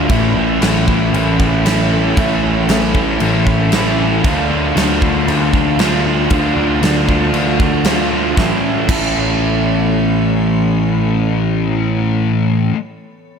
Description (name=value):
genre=rock, shoegaze and dream pop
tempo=116 BPM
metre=4/4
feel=straight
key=A major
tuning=A4 = 442 Hz
part: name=icy glass pad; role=sustained chords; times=0.0-12.2 s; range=B3 to C#6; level=-27 LUFS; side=right 2 dB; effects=chorus, built-in reverb
part: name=crunchy overdriven guitar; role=riff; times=0.0-12.7 s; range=A2 to F4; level=-19 LUFS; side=right 10 dB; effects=reverse reverb
part: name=crunchy overdriven guitar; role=riff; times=0.0-12.7 s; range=A2 to A4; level=-20 LUFS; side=equal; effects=spring reverb
part: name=thick fuzz guitar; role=riff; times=0.0-12.7 s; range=A2 to D4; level=-18 LUFS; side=left 9 dB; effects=distortion, lush chorus
part: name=growling picked electric bass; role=bass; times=0.0-12.7 s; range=A1 to D2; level=-20 LUFS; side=right 1 dB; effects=overdrive
part: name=big rock drum kit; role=drums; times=0.1-9.0 s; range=crash cymbal, kick drum, snare drum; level=-18 LUFS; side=equal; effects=none
room=small room reverb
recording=none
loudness=-12 LUFS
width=side -6 dB against mid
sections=0.0-8.4 A section; 8.4-12.5 B section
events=none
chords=0.1 Aadd9; 4.2 Dm6; 8.4 Aadd9